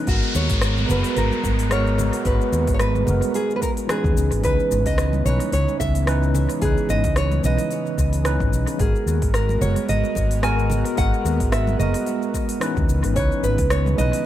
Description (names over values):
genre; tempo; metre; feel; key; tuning
sunset chillout; 110 BPM; 4/4; swing 56% on 16ths; G# minor; A4 = 440 Hz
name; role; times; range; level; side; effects
tine electric piano; accompaniment; 0.0-14.3 s; E3 to B4; -26 LUFS; moving between left 4 dB and right 5 dB; medium stereo tremolo, auto-pan, dub echo, shimmer reverb
airy breathy pad; sustained chords; 0.0-14.3 s; C#3 to A#5; -30 LUFS; right 2 dB; chorus, shimmer reverb
swell and downlifter; sound effects; 0.0-4.4 s; none; -30 LUFS; left 1 dB; none
nylon-string guitar; melody; 0.1-14.3 s; F#4 to G#5; -25 LUFS; right 2 dB; analog delay, shimmer reverb
fretless electric bass; bass; 0.1-14.1 s; F#1 to D#2; -21 LUFS; equal; tube saturation
deep house drum kit; drums; 0.1-14.2 s; cabasa, hi-hat, rim click; -31 LUFS; left 1 dB; studio reverb, dub echo
electronic kick drum; drums; 0.1-13.7 s; none; -24 LUFS; equal; studio reverb
congas and bongos; percussion; 0.8-14.2 s; none; -33 LUFS; right 3 dB; none
room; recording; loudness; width
light reverb, digital ambience; echo-heavy mix; -18 LUFS; side -12 dB against mid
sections
0.1-14.3 A section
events
none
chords
0.1 G#m9; 4.2 C#m9; 8.8 G#m9; 12.9 C#m9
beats
| 0.07 0.62 1.16 1.71 | 2.25 2.80 3.35 3.89 | 4.44 4.98 5.53 6.07 | 6.62 7.16 7.71 8.26 | 8.80 9.35 9.89 10.44 | 10.98 11.53 12.07 12.62 | 13.16 13.71 14.26